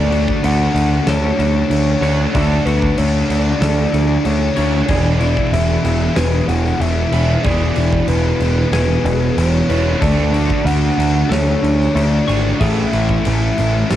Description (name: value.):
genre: rock, shoegaze and dream pop.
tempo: 94 BPM.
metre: 4/4.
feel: straight.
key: unclear.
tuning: A4 = 440 Hz.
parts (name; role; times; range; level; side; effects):
soft octave-layered synth lead; melody; 0.0-14.0 s; A4 to F#5; -22 LUFS; left 1 dB; chorus, cassette tape, tape echo.
twelve-string electric guitar; arpeggios; 0.0-14.0 s; E4 to C#6; -29 LUFS; left 8 dB; wide subtle chorus, cassette tape, tape echo.
crunchy overdriven guitar; riff; 0.0-14.0 s; E2 to F#4; -22 LUFS; right 9 dB; reverse reverb, cassette tape.
thick fuzz guitar; riff; 0.0-14.0 s; E2 to D4; -20 LUFS; left 6 dB; distortion, analog chorus, cassette tape.
growling picked electric bass; bass; 0.0-14.0 s; E1 to D2; -17 LUFS; right 1 dB; overdrive.
huge arena drum kit; drums; 0.1-14.0 s; crash cymbal, kick drum, snare drum; -24 LUFS; equal; cassette tape.
room: studio reverb.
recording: home recording on cassette.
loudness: -13 LUFS.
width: side -12 dB against mid.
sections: 0.0-14.0 A section.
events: none.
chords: 0.0 Dmaj7; 4.9 E7; 10.0 Dmaj7; 12.6 Amaj7.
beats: 0.44 1.07 1.71 | 2.34 2.98 3.62 4.25 | 4.89 5.53 6.17 6.81 | 7.45 8.09 8.73 9.37 | 10.02 10.66 11.31 11.96 | 12.60 13.25 13.90.